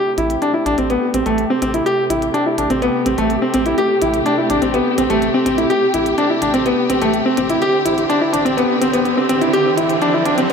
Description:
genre	piano and strings electronica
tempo	125 BPM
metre	4/4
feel	straight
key	A minor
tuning	A4 = 440 Hz
part	warm symphonic string section	sustained chords	0.0-10.5 s	C3 to G4	-21 LUFS	left 1 dB	low-pass filter
part	clear grand piano	riff	0.0-10.5 s	A3 to G4	-15 LUFS	equal	ping-pong delay
part	round analog bass	bass	0.2-10.5 s	A1	-29 LUFS	right 1 dB	none
part	minimal click drum kit	drums	0.2-10.5 s	hi-hat, toms	-31 LUFS	right 3 dB	overdrive, high-pass filter on hats, high-pass filter on toms
part	riser	sound effects	8.5-10.5 s	none	-26 LUFS	right 2 dB	none
room	moderate scoring stage reverb, RT60 1.6 s, small room ambience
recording	high-pass filter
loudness	-14 LUFS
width	side -6 dB against mid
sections	0.0-10.5 A section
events	build-up 0.0-10.5; filter sweep on string section 0.0-10.5; riser 8.5-10.5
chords	0.0 Am7

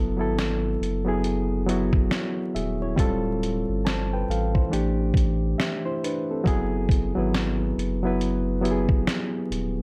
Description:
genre	lo-fi hip hop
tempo	69 BPM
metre	4/4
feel	swing 62% on 16ths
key	unclear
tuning	A4 = 440 Hz
part	reed electric piano	accompaniment	0.0-9.8 s	E3 to A5	-28 LUFS	equal	overdrive, cassette tape, low-pass filter
part	saturated sub bass	bass	0.0-9.8 s	D1 to A1	-30 LUFS	equal	none
part	dusty soul sampler-style drum kit	drums	0.4-9.8 s	hi-hat, kick drum, snare drum	-28 LUFS	equal	vintage 12-bit sampler grit
room	light reverb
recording	vinyl crackle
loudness	-25 LUFS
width	mono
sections	0.0-9.8 A section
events	none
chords	0.0 F#m7; 3.0 Dm7; 4.7 A5; 6.5 Eadd9

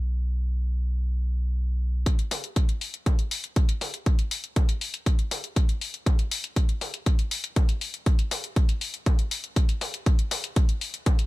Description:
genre	melodic techno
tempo	120 BPM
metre	4/4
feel	straight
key	unclear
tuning	A4 = 440 Hz
part	round analog bass	bass	0.0-2.0 s	B1	-25 LUFS	equal	sidechain pumping
part	electronic kick drum	drums	2.1-11.2 s	none	-22 LUFS	equal	none
part	house drum kit	drums	2.1-11.3 s	hi-hat, toms	-31 LUFS	left 3 dB	sidechain pumping on hats, high-pass filter on hats, sidechain pumping on toms, high-pass filter on toms, high-pass filter on room
room	little or no reverb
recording	none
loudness	-24 LUFS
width	side -19 dB against mid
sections	0.0-2.1 A section; 2.1-11.3 B section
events	build-up 2.1-11.3; drum fill 10.1-11.3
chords	none

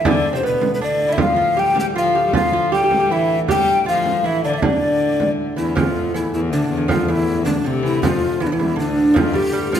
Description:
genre	medieval dance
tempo	158 BPM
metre	3/4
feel	straight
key	D dorian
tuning	A4 = 440 Hz
part	breathy mellow tenor recorder	melody	0.0-9.8 s	C4 to G5	-19 LUFS	left 2 dB	none
part	lute	second line	0.0-9.8 s	C3 to G4	-23 LUFS	right 4 dB	none
part	pedal harmonium	drone	0.0-9.8 s	D2 to A2	-28 LUFS	left 1 dB	none
part	clear viola da gamba	second line	0.1-9.8 s	D2 to G3	-24 LUFS	left 5 dB	none
part	frame drum	percussion	0.1-9.8 s	none	-22 LUFS	right 3 dB	none
room	moderate recital hall reverb, RT60 1.6 s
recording	none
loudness	-16 LUFS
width	side -9 dB against mid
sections	0.0-5.8 A section; 5.8-9.8 B section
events	none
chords	none

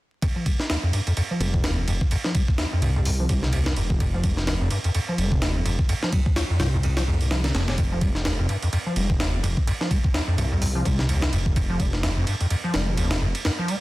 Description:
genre	breakbeat, breaks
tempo	127 BPM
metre	4/4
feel	swing 57% on 16ths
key	F minor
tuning	A4 = 440 Hz
part	overdriven acid bass	riff	0.2-13.8 s	Eb2 to Ab3	-25 LUFS	equal	wide subtle chorus
part	breakbeat sampler-style drum kit	drums	0.2-13.8 s	hi-hat, kick drum, ride cymbal, snare drum	-25 LUFS	equal	studio reverb
part	detuned saw bass	bass	1.4-13.3 s	F1 to C2	-24 LUFS	equal	none
room	digital ambience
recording	dense, heavily limited modern master, vinyl crackle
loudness	-21 LUFS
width	side -18 dB against mid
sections	0.2-13.8 A section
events	filter sweep on acid bass 0.2-13.8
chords	0.2 Fm

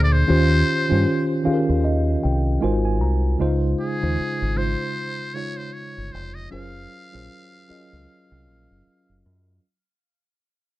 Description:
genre	R&B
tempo	77 BPM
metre	4/4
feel	swing 58% on 16ths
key	unclear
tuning	A4 = 440 Hz
part	trumpet with metal mute	melody	0.0-9.2 s	Ab4 to F5	-28 LUFS	left 1 dB	analog delay
part	mellow tine electric piano	accompaniment	0.0-9.6 s	Bb2 to Bb5	-23 LUFS	equal	medium stereo tremolo
part	deep dub fingered electric bass	bass	0.0-9.6 s	F1 to G2	-20 LUFS	equal	none
room	light reverb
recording	nothing above 10.4 kHz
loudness	-18 LUFS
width	side -17 dB against mid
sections	0.0-9.6 A section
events	fade-out 0.0-9.6; tine electric piano fill 1.1-3.4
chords	0.3 Eb13; 2.6 Ab13; 3.4 Dbmaj7; 6.5 Gbmaj9#11

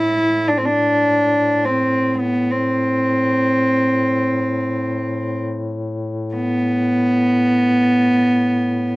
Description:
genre	caucasian folk, Caucasian lament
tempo	free time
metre	none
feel	none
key	A minor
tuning	A4 = 440 Hz
part	warm cello	melody	0.0-9.0 s	B3 to E4	-16 LUFS	equal	cassette tape
part	dark duduk	drone	0.0-9.0 s	A2	-24 LUFS	left 2 dB	cassette tape
room	light reverb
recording	home recording on cassette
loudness	-16 LUFS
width	side -20 dB against mid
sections	0.0-9.0 A section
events	none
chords	none

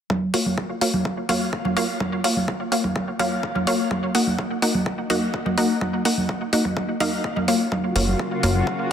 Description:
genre	progressive house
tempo	126 BPM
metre	4/4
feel	straight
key	F# major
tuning	A4 = 439 Hz
part	electronic kick drum	drums	0.1-8.8 s	none	-30 LUFS	left 1 dB	high-pass filter on kick, high-pass filter on room
part	congas	percussion	0.1-8.6 s	none	-27 LUFS	right 2 dB	overdrive, sidechain pumping on perc
part	wide unison pluck	stabs	0.3-8.5 s	A#3 to F#5	-22 LUFS	equal	sidechain pumping, tape echo
part	electronic hi-hat	drums	0.3-8.5 s	none	-27 LUFS	left 2 dB	sidechain pumping on hats
part	lush unison pad	sustained chords	7.7-8.9 s	C#3 to F#4	-26 LUFS	left 2 dB	chorus, sidechain pumping
part	fat analog bass	bass	8.0-8.6 s	F#1	-22 LUFS	left 1 dB	sidechain pumping
room	wet scoring stage reverb, RT60 2.0 s, digital ambience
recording	dense, heavily limited modern master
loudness	-20 LUFS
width	side -8 dB against mid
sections	0.1-8.9 A section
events	none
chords	0.1 F#maj7; 3.9 D#m; 7.7 F#maj7

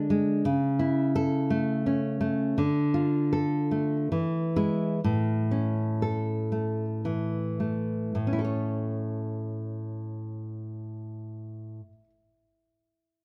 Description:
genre	romantic piece for solo classical guitar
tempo	53-88 BPM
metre	3/4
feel	rubato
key	A major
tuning	A4 = 440 Hz
part	nylon-string guitar	solo	0.0-12.1 s	A2 to C#5	-28 LUFS	equal	none
room	moderate recital hall reverb, RT60 1.4 s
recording	close, detailed microphones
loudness	-28 LUFS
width	mono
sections	0.0-8.2 A section; 8.2-11.4 B section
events	slowing down 1.5-8.2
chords	0.5 A/C#; 2.6 Dm; 4.1 E; 5.0 A

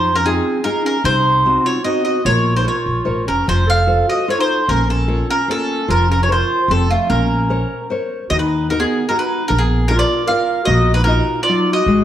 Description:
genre	italian folk, Italian serenade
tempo	150 BPM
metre	3/4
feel	rubato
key	Bb harmonic minor, Eb harmonic minor from 8.3 s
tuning	A4 = 440 Hz
part	mandolin	melody	0.0-12.0 s	F4 to F5	-17 LUFS	equal	none
part	warm clarinet	second line	0.0-12.0 s	A3 to Bb4	-22 LUFS	right 3 dB	none
part	nylon-string guitar	accompaniment	0.0-12.0 s	C3 to Eb5	-22 LUFS	left 3 dB	none
part	upright bass	bass	0.0-12.0 s	F1 to F2	-18 LUFS	equal	none
room	moderate recital hall reverb, RT60 1.4 s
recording	none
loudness	-14 LUFS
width	side -11 dB against mid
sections	0.0-8.3 A section; 8.3-12.0 B section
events	none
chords	0.0 Fm7; 1.0 Cdim; 2.2 Bbmadd9; 3.5 F; 4.7 Bbm; 5.9 Fsus4; 6.7 F; 7.1 Bbmadd9; 8.3 Ebm; 9.5 Bb; 10.7 Ebmadd9/Bb

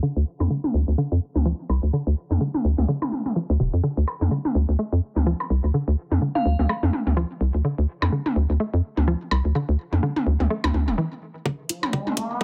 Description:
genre	minimal techno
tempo	126 BPM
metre	4/4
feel	swing 57% on 16ths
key	D minor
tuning	A4 = 439 Hz
part	hollow square pluck	riff	0.0-12.4 s	C3 to A3	-30 LUFS	equal	chorus, cassette tape, sidechain pumping, dub echo
part	hollow knocking FM bass	bass	0.2-11.0 s	D1 to F2	-22 LUFS	equal	sidechain pumping
part	electronic toms and percussion blips	percussion	0.4-12.2 s	none	-29 LUFS	equal	digital delay
part	glassy synth bell	melody	6.4-6.7 s	F5	-31 LUFS	equal	chorus, phaser, digital delay
part	electronic kick drum	drums	11.5-12.4 s	none	-30 LUFS	equal	high-pass filter on kick
part	riser	sound effects	11.7-12.4 s	none	-32 LUFS	equal	none
part	filtered dub chord stab	stabs	11.7-11.8 s	A3 to F4	-39 LUFS	equal	phaser, analog chorus, digital delay
part	electronic hi-hat	drums	11.7-12.3 s	none	-29 LUFS	equal	high-pass filter on hats, low-pass filter on hats
room	little or no reverb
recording	low-pass filter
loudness	-23 LUFS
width	mono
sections	0.0-11.5 A section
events	filter sweep on synth arpeggio sound 0.0-11.5; filter sweep 0.0-11.5; riser 11.8-12.4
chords	0.0 Dm

